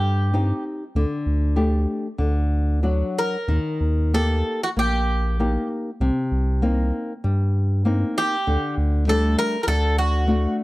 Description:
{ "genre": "fado-style ballad", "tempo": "98 BPM", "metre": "4/4", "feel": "rubato", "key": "unclear", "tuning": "A4 = 440 Hz", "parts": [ { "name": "Greek bouzouki", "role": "melody", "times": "0.0-10.6 s", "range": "F#4 to Bb4", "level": "-24 LUFS", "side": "right 1 dB", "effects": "none" }, { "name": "flamenco guitar", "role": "accompaniment", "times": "0.0-10.6 s", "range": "C3 to G4", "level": "-25 LUFS", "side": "left 2 dB", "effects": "none" }, { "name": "round analog bass", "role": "bass", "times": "0.0-10.5 s", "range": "Bb1 to G2", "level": "-20 LUFS", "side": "equal", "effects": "none" } ], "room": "studio reverb", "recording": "dry, close 1970s-style studio recording", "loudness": "-20 LUFS", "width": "side -19 dB against mid", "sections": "0.0-10.6 A section", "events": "none", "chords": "0.0 Cm; 1.0 Dsus4; 2.2 D; 3.5 Eb; 6.0 Cm7; 8.5 Dsus4; 9.7 D" }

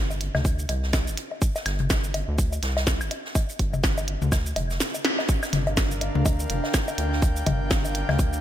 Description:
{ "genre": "minimal techno", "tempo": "124 BPM", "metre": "4/4", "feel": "swing 58% on 16ths", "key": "G minor", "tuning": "A4 = 440 Hz", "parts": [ { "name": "rubbery square bass", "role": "bass", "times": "0.0-8.4 s", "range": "F1 to D2", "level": "-28 LUFS", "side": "equal", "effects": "sidechain pumping" }, { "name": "minimal click drum kit", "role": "drums", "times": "0.1-8.4 s", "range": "hi-hat, shaker, snare drum", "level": "-29 LUFS", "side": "right 1 dB", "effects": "none" }, { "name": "electronic woodblock and toms", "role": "percussion", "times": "0.1-8.2 s", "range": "none", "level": "-30 LUFS", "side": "left 3 dB", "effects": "diffuse ambient delay" }, { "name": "swinging big-band drum kit", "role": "drums", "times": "0.2-8.3 s", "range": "hi-hat, snare drum", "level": "-36 LUFS", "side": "right 2 dB", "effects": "sidechain pumping on hats, high-pass filter on hats, high-pass filter on snare, high-pass filter on room" }, { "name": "electronic kick drum", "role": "drums", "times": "0.4-8.3 s", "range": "none", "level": "-24 LUFS", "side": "equal", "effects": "none" }, { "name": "airy breathy pad", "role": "texture", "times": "5.3-8.4 s", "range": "D4 to G5", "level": "-31 LUFS", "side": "equal", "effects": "chorus, sidechain pumping" } ], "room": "light reverb", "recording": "none", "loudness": "-22 LUFS", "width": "side -11 dB against mid", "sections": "0.0-5.3 A section; 5.3-8.4 B section", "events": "drum fill 5.0; band accent 5.0; drop 5.3-8.4", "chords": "0.0 G5; 5.3 Gm7" }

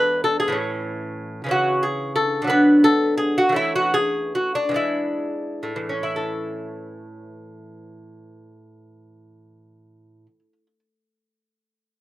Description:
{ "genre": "classical, baroque-style dance for lute", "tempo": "40-65 BPM (dotted quarters)", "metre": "6/8", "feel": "rubato", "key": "A major", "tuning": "A4 = 440 Hz", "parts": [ { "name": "lute", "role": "solo", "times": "0.0-10.8 s", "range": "E2 to B4", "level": "-19 LUFS", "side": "equal", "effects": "none" } ], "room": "light reverb", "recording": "recorded outdoors, with no room sound", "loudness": "-19 LUFS", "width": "side -16 dB against mid", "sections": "0.0-6.2 A section; 6.2-11.7 B section", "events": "slowing down 0.6-6.2", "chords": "0.0 E7; 0.6 A; 1.5 C#madd11; 2.5 Bm/D; 3.6 A/E; 4.8 E7; 6.2 A" }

